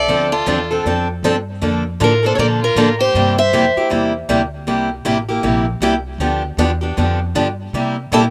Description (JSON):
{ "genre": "acoustic string swing (jazz manouche)", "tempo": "157 BPM", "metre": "4/4", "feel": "swing 62% on 8ths", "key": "unclear", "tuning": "A4 = 437 Hz", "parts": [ { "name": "picked steel-string acoustic guitar", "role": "melody", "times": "0.0-3.9, 8.1-8.2 s", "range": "A4 to E5", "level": "-20 LUFS", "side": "equal", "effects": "none" }, { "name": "clear violin", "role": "second line", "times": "0.0-3.9, 8.1-8.2 s", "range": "E4 to C5", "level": "-24 LUFS", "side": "equal", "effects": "slapback echo" }, { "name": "upright bass", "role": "bass", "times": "0.0-8.3 s", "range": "A1 to C3", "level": "-24 LUFS", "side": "equal", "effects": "none" }, { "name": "picked steel-string acoustic guitar", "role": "accompaniment", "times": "0.1-8.2 s", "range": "C3 to A4", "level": "-20 LUFS", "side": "equal", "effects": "none" } ], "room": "little or no reverb", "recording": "recorded outdoors, with no room sound", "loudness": "-17 LUFS", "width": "mono", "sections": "0.0-8.3 A section", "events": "none", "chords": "0.1 Dm7; 1.6 Bbmaj7; 3.1 C7; 6.2 G7; 7.7 C7", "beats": "| 0.09 0.47 0.85 1.23 | 1.62 2.00 2.38 2.77 | 3.15 3.53 3.91 4.30 | 4.68 5.06 5.44 5.83 | 6.21 6.59 6.98 7.36 | 7.74 8.13" }